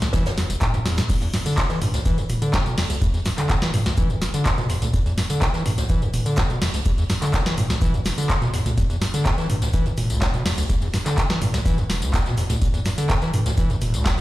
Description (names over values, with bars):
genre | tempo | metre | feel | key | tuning
acid house | 125 BPM | 4/4 | straight | E minor | A4 = 437 Hz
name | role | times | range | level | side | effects
overdriven acid bass | riff | 0.0-14.2 s | E1 to E3 | -23 LUFS | equal | wide subtle chorus, vintage 12-bit sampler grit, sidechain pumping, digital delay
booming analog drum machine | drums | 0.0-14.2 s | crash cymbal, handclaps, hi-hat, snare drum, tambourine, toms | -24 LUFS | equal | none
jazz brush drum kit | drums | 0.0-14.2 s | hi-hat, shaker, snare drum | -35 LUFS | right 1 dB | high-pass filter on hats, high-pass filter on snare, high-pass filter on perc, high-pass filter on room
electronic kick drum | drums | 0.1-14.2 s | none | -24 LUFS | equal | none
room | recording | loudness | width
light reverb, small room ambience | played on a big sound system in a bare room, stone room reverb | -19 LUFS | side -16 dB against mid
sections
0.0-14.2 A section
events
drum fill 0.9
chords
none